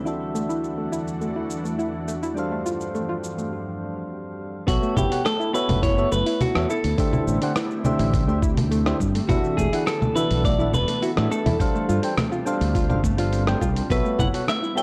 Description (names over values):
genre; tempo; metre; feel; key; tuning
sunset chillout; 104 BPM; 4/4; straight; B phrygian; A4 = 440 Hz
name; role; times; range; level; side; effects
soft electric-piano-like synth keys; accompaniment; 0.0-14.8 s; D3 to G5; -30 LUFS; equal; chorus, tremolo, low-pass filter, tape echo
ethereal airy pad; sustained chords; 0.0-14.8 s; E2 to A4; -34 LUFS; equal; ensemble chorus, built-in reverb
soft round pluck; arpeggios; 0.0-14.8 s; A3 to F4; -32 LUFS; equal; chorus, tape echo
dusty soul sampler-style drum kit; drums; 0.1-14.8 s; congas, hi-hat, rim click, shaker; -30 LUFS; equal; none
clean electric guitar; melody; 4.7-14.8 s; F#4 to G5; -28 LUFS; equal; tape echo
fretless electric bass; bass; 4.7-14.3 s; E1 to A2; -26 LUFS; equal; subtle chorus
electronic kick drum; drums; 4.7-14.3 s; none; -27 LUFS; equal; none
room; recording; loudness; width
light reverb, digital ambience; dry, gritty hardware recording, cassette tape; -23 LUFS; mono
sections
0.0-4.7 A section; 4.7-14.8 B section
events
filter sweep on synth arpeggio sound 0.0-4.7; break 3.5-4.7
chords
0.1 E9sus4; 2.4 G9sus4; 4.7 B9sus4; 6.7 D9sus4; 9.3 E9sus4; 11.6 G9sus4; 13.9 B9sus4